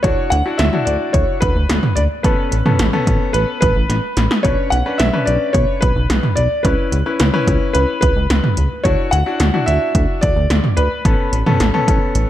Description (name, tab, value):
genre	synth-pop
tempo	109 BPM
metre	4/4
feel	straight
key	unclear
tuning	A4 = 440 Hz
part	clear concert grand piano	melody	0.0-12.3 s	B4 to F#5	-20 LUFS	equal	none
part	clear baby grand piano	accompaniment	0.0-12.3 s	B3 to B4	-22 LUFS	left 3 dB	none
part	chorused synth bass	bass	0.0-12.3 s	A1 to D2	-18 LUFS	equal	none
part	80s electronic pad drums	drums	0.0-12.3 s	hi-hat, kick drum, snare drum, toms	-17 LUFS	equal	gated reverb on snare and toms
room	light reverb, digital ambience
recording	dark, warm production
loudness	-14 LUFS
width	side -12 dB against mid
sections	0.0-12.3 A section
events	drum fill 3.9-4.4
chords	0.0 Dadd9; 2.2 Aadd9; 4.4 Bmadd9; 6.6 C#m7; 8.8 Dadd9; 11.1 Aadd9